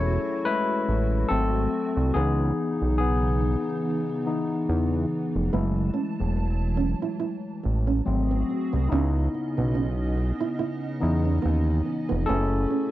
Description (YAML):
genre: R&B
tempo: 71 BPM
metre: 4/4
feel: swing 56% on 16ths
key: C# minor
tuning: A4 = 440 Hz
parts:
  - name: barky tine electric piano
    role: accompaniment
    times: 0.0-12.9 s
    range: E3 to C#5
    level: -27 LUFS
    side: left 3 dB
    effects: overdrive
  - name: hollow soft pad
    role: sustained chords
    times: 0.0-12.9 s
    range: C#3 to A5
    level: -34 LUFS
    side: right 3 dB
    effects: ensemble chorus
  - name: fat analog bass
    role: bass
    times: 0.0-12.7 s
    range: E1 to E2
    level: -24 LUFS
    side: right 1 dB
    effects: none
  - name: nylon-string guitar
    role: second line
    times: 5.5-12.9 s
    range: B3 to E4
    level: -30 LUFS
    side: right 7 dB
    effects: none
room: light reverb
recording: dark, warm production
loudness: -23 LUFS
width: side -14 dB against mid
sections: 0.0-12.9 A section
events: tine electric piano solo 0.0-12.9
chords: 0.0 F#m7; 1.3 G#7b9; 2.1 C#m9; 5.5 F#m7; 8.0 G#7b9; 8.9 C#m9; 12.3 F#m7